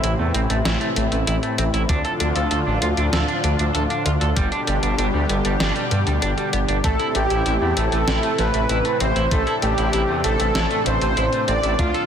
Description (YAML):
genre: synthwave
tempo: 97 BPM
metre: 4/4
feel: straight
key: A minor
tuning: A4 = 440 Hz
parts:
  - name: lush unison pad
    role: sustained chords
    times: 0.0-12.1 s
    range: A2 to A4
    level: -25 LUFS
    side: equal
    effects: chorus, sidechain pumping
  - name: clean electric guitar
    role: riff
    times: 0.0-12.0 s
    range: G3 to A4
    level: -27 LUFS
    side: right 3 dB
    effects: lush chorus, low-pass filter, digital delay
  - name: wide detuned saw bass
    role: bass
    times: 0.0-11.9 s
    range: G1 to G2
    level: -22 LUFS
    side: equal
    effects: chorus
  - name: clean 12-bit digital drum machine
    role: drums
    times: 0.0-12.1 s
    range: hi-hat, snare drum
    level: -26 LUFS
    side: left 1 dB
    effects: none
  - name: electronic kick drum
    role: drums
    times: 1.9-11.9 s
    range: none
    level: -22 LUFS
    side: equal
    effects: none
  - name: soft supersaw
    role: melody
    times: 6.8-12.1 s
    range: F4 to D5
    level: -21 LUFS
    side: equal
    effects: tape echo
room: moderate concert hall reverb, RT60 2.1 s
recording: dense, heavily limited modern master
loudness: -18 LUFS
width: side -8 dB against mid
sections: 0.0-12.1 A section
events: none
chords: 0.0 Am; 1.9 Dm; 4.4 G; 6.8 Am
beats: 0.04 0.66 1.27 | 1.89 2.51 3.13 3.75 | 4.37 4.99 5.60 6.22 | 6.84 7.46 8.08 8.70 | 9.31 9.93 10.55 11.17 | 11.79